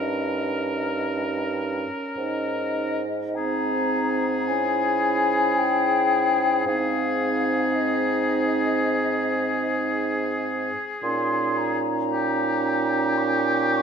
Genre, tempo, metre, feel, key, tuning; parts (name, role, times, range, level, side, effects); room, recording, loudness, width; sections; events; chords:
classical, slow romantic movement for wind quintet; 55 BPM; 4/4; rubato; Ab major; A4 = 440 Hz
mellow hollow silver concert flute; melody; 0.0-13.8 s; Eb5 to Db6; -27 LUFS; left 7 dB
bright oboe; second line; 0.0-13.8 s; G4 to Bb4; -26 LUFS; left 1 dB
mellow clarinet; accompaniment; 0.0-13.8 s; Eb4 to Fb4; -30 LUFS; right 6 dB
warm French horn; accompaniment; 0.0-13.8 s; C4 to Db4; -30 LUFS; right 1 dB
mellow bassoon; bass; 0.0-13.8 s; G2 to Bb2; -28 LUFS; right 5 dB
wet recital hall reverb, RT60 1.5 s; minimal, uncompressed stereo recording; -21 LUFS; side -6 dB against mid
0.0-13.8 A section
0.0 Eb7/G; 2.2 Ab; 4.5 Dbm/Ab; 6.7 Ab; 11.0 Eb7/Bb